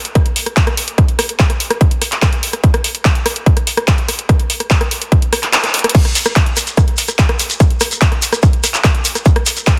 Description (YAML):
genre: trance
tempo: 145 BPM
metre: 4/4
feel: straight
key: none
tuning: none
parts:
  - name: techno drum kit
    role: drums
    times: 0.1-9.8 s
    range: crash cymbal, handclaps, hi-hat, rim click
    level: -19 LUFS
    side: equal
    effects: overdrive, small room reverb
  - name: electronic kick drum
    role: drums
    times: 0.2-9.8 s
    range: none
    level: -14 LUFS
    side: equal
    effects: distortion, overdrive, small room reverb
  - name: shekere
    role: percussion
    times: 5.9-9.8 s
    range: none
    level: -21 LUFS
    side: equal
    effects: none
room: light reverb, digital ambience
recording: dense, heavily limited modern master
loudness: -14 LUFS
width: mono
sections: 0.0-5.9 A section; 5.9-9.8 B section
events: kick drops out 5.5-5.9; band accent 5.5; drum fill 5.7; drop 5.9-9.8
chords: none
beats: 0.15 0.57 | 0.98 1.40 1.81 2.22 | 2.64 3.05 3.46 3.88 | 4.29 4.71 5.12 5.53 | 5.95 6.36 6.77 7.19 | 7.60 8.02 8.43 8.84 | 9.26 9.67